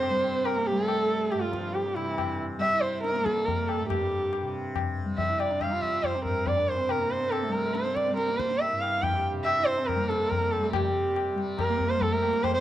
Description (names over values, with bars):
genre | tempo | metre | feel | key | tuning
indian classical, Hindustani | 140 BPM | 4/4 | straight | G raga bageshri | A4 = 440 Hz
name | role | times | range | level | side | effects
warm sarangi | melody | 0.0-12.6 s | E4-20c to G5 | -26 LUFS | right 1 dB | none
warm sarangi | second line | 0.0-12.6 s | E3 to G4 | -34 LUFS | right 8 dB | none
tanpura | drone | 0.0-12.6 s | G2 to G3 | -35 LUFS | left 2 dB | none
tabla | percussion | 0.0-12.6 s | none | -33 LUFS | left 5 dB | none
room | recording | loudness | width
light reverb | dry, close 1970s-style studio recording | -25 LUFS | side -12 dB against mid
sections
0.0-10.7 A section; 10.7-12.6 B section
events
none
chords
none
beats
0.02 | 0.45 0.88 1.31 1.74 | 2.17 2.60 3.03 3.46 | 3.89 4.32 4.75 5.18 | 5.61 6.04 6.47 6.89 | 7.32 7.75 8.18 8.60 | 9.03 9.46 9.88 10.31 | 10.74 11.16 11.59 12.01 | 12.44